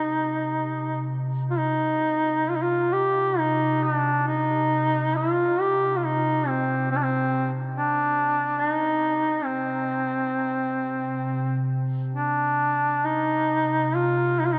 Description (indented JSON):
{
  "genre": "caucasian folk, Caucasian lament",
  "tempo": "63-72 BPM",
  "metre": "3/4",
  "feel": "rubato",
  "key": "C minor",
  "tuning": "A4 = 440 Hz",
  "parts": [
    { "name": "clear duduk", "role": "melody", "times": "0.0-14.6 s", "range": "C4 to G4", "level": "-25 LUFS", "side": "equal", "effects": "none" },
    { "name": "ethereal airy pad", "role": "drone", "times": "0.0-14.6 s", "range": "C3", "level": "-31 LUFS", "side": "equal", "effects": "ensemble chorus, built-in reverb" }
  ],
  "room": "wet cathedral reverb, RT60 7.0 s",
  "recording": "none",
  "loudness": "-24 LUFS",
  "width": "mono",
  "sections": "0.0-12.1 A section; 12.1-14.6 B section",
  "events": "none",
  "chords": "none"
}